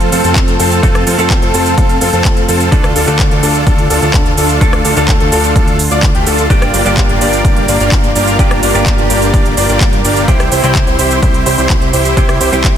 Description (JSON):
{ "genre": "EDM, festival progressive house", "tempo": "127 BPM", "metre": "4/4", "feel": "straight", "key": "F major", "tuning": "A4 = 440 Hz", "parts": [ { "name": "direct-recorded clean electric guitar", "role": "accompaniment", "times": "0.0-12.8 s", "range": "G2 to A4", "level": "-18 LUFS", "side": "right 2 dB", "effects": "lush chorus, sidechain pumping, tape echo" }, { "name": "lush unison pad", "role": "sustained chords", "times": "0.0-12.8 s", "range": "C3 to Bb4", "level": "-21 LUFS", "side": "equal", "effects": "chorus, sidechain pumping" }, { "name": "clear grand piano", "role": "arpeggios", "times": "0.0-12.7 s", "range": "G4 to D5", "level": "-18 LUFS", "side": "left 1 dB", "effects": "sidechain pumping, tape echo" }, { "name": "dense compressed supersaw", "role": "riff", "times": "0.0-12.7 s", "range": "Bb3 to D5", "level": "-16 LUFS", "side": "equal", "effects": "sidechain pumping, tape echo" }, { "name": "fat analog bass", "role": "bass", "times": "0.0-12.7 s", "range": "G1 to G2", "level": "-17 LUFS", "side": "equal", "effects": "sidechain pumping" }, { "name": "big-room dance drum kit", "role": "drums", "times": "0.0-12.7 s", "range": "handclaps, hi-hat, rim click, shaker", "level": "-18 LUFS", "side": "right 1 dB", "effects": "none" }, { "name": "electronic kick drum", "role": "drums", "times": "0.4-12.7 s", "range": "none", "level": "-12 LUFS", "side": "equal", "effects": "none" } ], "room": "light reverb", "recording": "dense, heavily limited modern master", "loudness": "-8 LUFS", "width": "side -9 dB against mid", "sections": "0.0-12.8 A section", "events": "none", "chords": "0.0 F; 2.7 Dm; 6.5 Gm7; 10.3 C" }